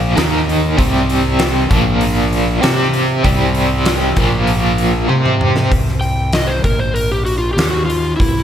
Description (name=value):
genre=blues rock power trio and southern rock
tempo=97 BPM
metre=4/4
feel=straight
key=unclear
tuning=A4 = 440 Hz
part: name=biting overdriven guitar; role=riff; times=0.0-5.7 s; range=Bb2 to C5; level=-16 LUFS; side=right 1 dB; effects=tremolo
part: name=fuzz fingered electric bass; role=bass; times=0.0-8.4 s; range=Bb1 to C3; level=-18 LUFS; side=equal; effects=overdrive
part: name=huge arena drum kit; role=drums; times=0.2-8.4 s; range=hi-hat, kick drum, snare drum, toms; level=-18 LUFS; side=equal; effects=none
part: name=overdriven slide guitar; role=melody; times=6.0-8.4 s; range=E4 to G5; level=-18 LUFS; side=equal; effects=slapback echo
room=light reverb, studio ambience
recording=none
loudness=-12 LUFS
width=side -10 dB against mid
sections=0.0-5.7 A section; 5.7-8.4 B section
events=drum fill 5.1-5.7; electric slide guitar solo 5.7-8.4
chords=0.2 Eb5; 0.8 C5; 1.7 Bb5; 2.6 C5; 4.2 Bb5; 5.1 C5; 6.6 N.C.; 7.6 Ebmadd9